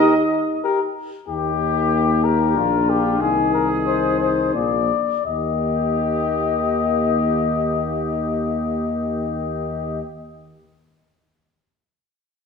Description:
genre	classical, brass quintet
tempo	83-95 BPM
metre	3/4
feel	straight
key	Eb major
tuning	A4 = 443 Hz
part	mellow cornet	melody	0.0-10.0 s	G4 to Eb5	-22 LUFS	left 10 dB	none
part	warm trumpet	second line	0.0-10.0 s	F4 to Eb5	-27 LUFS	right 4 dB	none
part	mellow French horn	accompaniment	0.0-10.0 s	Bb3 to G4	-25 LUFS	left 4 dB	none
part	warm euphonium	accompaniment	0.0-10.0 s	Eb3 to Eb4	-26 LUFS	right 2 dB	none
part	warm bass trombone	bass	1.3-10.0 s	Bb1 to Eb2	-27 LUFS	right 1 dB	none
room	wet recital hall reverb, RT60 1.5 s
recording	none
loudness	-18 LUFS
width	side -5 dB against mid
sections	0.0-1.3 A section; 1.3-5.3 B section; 5.3-9.5 C section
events	slowing down 0.3-5.3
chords	0.0 Eb; 2.6 Bb; 3.2 Ab/C; 4.5 Bb7; 5.3 Eb

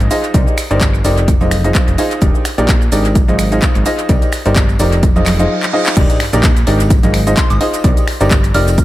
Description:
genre	piano house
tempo	128 BPM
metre	4/4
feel	swing 56% on 16ths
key	unclear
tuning	A4 = 440 Hz
part	bright upright piano	riff	0.0-8.8 s	D4 to Eb5	-17 LUFS	equal	sidechain pumping, low-pass filter, dub echo
part	plucky analog bass	bass	0.0-8.8 s	Eb1 to C2	-15 LUFS	equal	sidechain pumping
part	house drum kit	drums	0.0-8.8 s	crash cymbal, finger snaps, handclaps, hi-hat, shaker	-21 LUFS	equal	studio reverb, dub echo
part	tambourine and congas	percussion	0.1-8.8 s	none	-25 LUFS	right 3 dB	dub echo
part	electronic kick drum	drums	0.3-8.8 s	none	-13 LUFS	equal	studio reverb
part	reverse cymbal and sub drop	sound effects	5.2-7.8 s	none	-25 LUFS	right 1 dB	none
part	soft synth bell	melody	7.4-8.8 s	C6 to F6	-23 LUFS	right 2 dB	chorus, dub echo
room	light reverb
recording	echo-heavy mix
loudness	-10 LUFS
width	side -15 dB against mid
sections	0.0-6.0 A section; 6.0-8.8 B section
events	reverse cymbal 5.2-6.0; break 5.5-6.0; drum fill 5.6-6.0; drop 6.0-8.8; impact 6.0-7.8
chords	0.3 Cm9; 1.3 Fm7; 2.2 Ebmaj7; 3.2 Ab6; 4.1 Cm9; 5.0 Fm7; 6.0 Ebmaj7; 6.9 Ab6; 7.8 Cm9

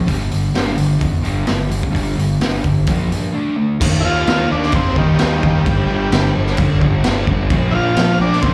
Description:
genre	garage rock duo or trio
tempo	129 BPM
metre	4/4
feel	straight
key	unclear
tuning	A4 = 440 Hz
part	fuzz guitar	riff	0.0-8.5 s	G2 to Eb4	-21 LUFS	equal	distortion
part	fuzz picked electric bass	bass	0.1-8.5 s	G1 to G2	-23 LUFS	equal	overdrive
part	raw garage drum kit	drums	0.1-8.5 s	crash cymbal, hi-hat, kick drum, snare drum	-21 LUFS	equal	none
part	overdriven combo organ	melody	4.0-8.5 s	Eb3 to F4	-20 LUFS	equal	slapback echo
room	little or no reverb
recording	live gig heard through the venue's PA, club ambience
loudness	-16 LUFS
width	mono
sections	0.0-3.8 A section; 3.8-8.5 B section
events	none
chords	0.1 G5; 2.9 Bb5; 3.3 D5; 3.8 Eb; 5.6 G5; 7.5 Bb

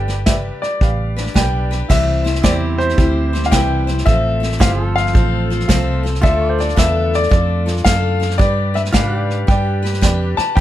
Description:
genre	honky-tonk and classic country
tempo	111 BPM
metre	4/4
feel	swing 66% on 8ths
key	C major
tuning	A4 = 440 Hz
part	clear upright piano	melody	0.0-10.6 s	C5 to A5	-21 LUFS	left 2 dB	none
part	clear upright piano	accompaniment	0.0-10.6 s	E4 to F5	-28 LUFS	right 6 dB	none
part	picked steel-string acoustic guitar	accompaniment	0.0-10.6 s	C3 to C5	-24 LUFS	left 7 dB	none
part	vintage muted fingered electric bass	bass	0.0-10.6 s	G1 to Ab2	-18 LUFS	equal	none
part	vintage brush drum kit	drums	0.1-10.6 s	crash cymbal, hi-hat, kick drum, snare drum	-17 LUFS	equal	none
part	pedal steel guitar	sustained chords	2.4-10.6 s	C4 to D5	-26 LUFS	right 4 dB	none
room	little or no reverb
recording	close, detailed microphones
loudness	-14 LUFS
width	side -13 dB against mid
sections	0.0-1.9 A section; 1.9-10.6 B section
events	none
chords	0.0 G; 1.9 C; 4.1 F; 6.2 Dm; 8.4 G

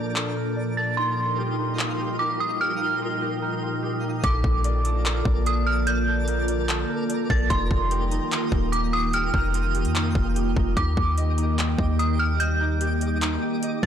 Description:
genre	hip hop, atmospheric cloud-rap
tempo	147 BPM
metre	4/4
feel	half-time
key	Bb major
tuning	A4 = 440 Hz
part	dark detuned synth bell	melody	0.0-13.9 s	C6 to A6	-28 LUFS	right 2 dB	chorus, tremolo, low-pass filter, ping-pong delay
part	glassy FM pad	sustained chords	0.0-13.9 s	Bb2 to F4	-28 LUFS	equal	ensemble chorus, built-in reverb, low-pass filter
part	concert harp	arpeggios	0.0-13.9 s	Eb4 to Eb5	-34 LUFS	right 2 dB	low-pass filter, ping-pong delay
part	twinkling granular texture	texture	0.0-13.9 s	F4 to Eb6	-35 LUFS	left 2 dB	built-in reverb
part	trap drum kit	drums	0.2-13.9 s	handclaps, hi-hat, kick drum	-26 LUFS	equal	overdrive
part	warm 808-style bass	bass	4.2-13.9 s	Eb1 to F2	-24 LUFS	equal	none
room	light reverb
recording	blown-out, overdriven recording, overdrive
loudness	-21 LUFS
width	side -9 dB against mid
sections	0.0-4.2 A section; 4.2-13.9 B section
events	break 3.4-4.2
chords	0.0 Bbmaj7; 1.0 F9sus4; 4.2 Bbmaj7; 7.5 F9sus4; 10.8 Ebmaj7

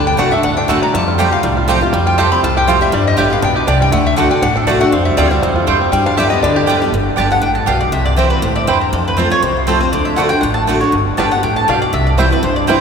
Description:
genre	bluegrass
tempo	240 BPM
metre	4/4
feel	swing 54% on 8ths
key	G mixolydian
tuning	A4 = 440 Hz
part	lap resonator guitar	second line	0.0-9.0 s	G4 to B5	-19 LUFS	left 2 dB	none
part	picked steel-string acoustic guitar	accompaniment	0.0-12.8 s	E2 to G4	-18 LUFS	left 1 dB	none
part	bluegrass banjo	arpeggios	0.0-6.9, 11.2-12.8 s	G3 to G4	-19 LUFS	right 1 dB	none
part	upright bass	bass	0.0-12.8 s	G1 to G2	-18 LUFS	equal	none
part	mandolin	stabs	0.2-12.8 s	A3 to A5	-19 LUFS	right 4 dB	none
part	mandolin	melody	7.2-12.8 s	F4 to A5	-17 LUFS	left 1 dB	none
room	wet cathedral reverb, RT60 6.3 s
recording	recorded in a church or concert hall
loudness	-11 LUFS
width	side -6 dB against mid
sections	0.0-6.9 A section; 6.9-12.8 B section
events	resonator guitar played with a steel bar solo 0.0-6.9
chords	0.0 D; 0.9 Fadd9; 2.9 G; 3.9 D; 4.9 Fadd9; 5.9 G; 7.9 C; 8.9 F; 9.9 D; 10.9 G; 11.9 C

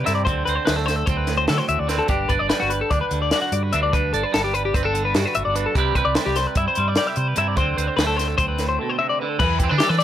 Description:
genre	math rock and midwest emo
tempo	296 BPM (eighths)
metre	9/8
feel	straight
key	G major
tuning	A4 = 440 Hz
part	twangy electric guitar	accompaniment	0.0-10.0 s	G2 to D5	-25 LUFS	right 9 dB	none
part	twelve-string electric guitar	arpeggios	0.0-10.0 s	F#4 to F#5	-22 LUFS	left 5 dB	none
part	hollow-body short-scale fingered electric bass	bass	0.0-10.0 s	G1 to E3	-25 LUFS	equal	none
part	compact cocktail drum kit	drums	0.1-10.0 s	crash cymbal, hi-hat, kick drum, snare drum	-24 LUFS	equal	none
room	little or no reverb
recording	none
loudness	-18 LUFS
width	side -11 dB against mid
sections	0.0-9.4 A section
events	none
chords	0.3 D7; 2.1 Gmaj7; 5.8 Cmaj7; 7.6 D5; 9.4 Em7

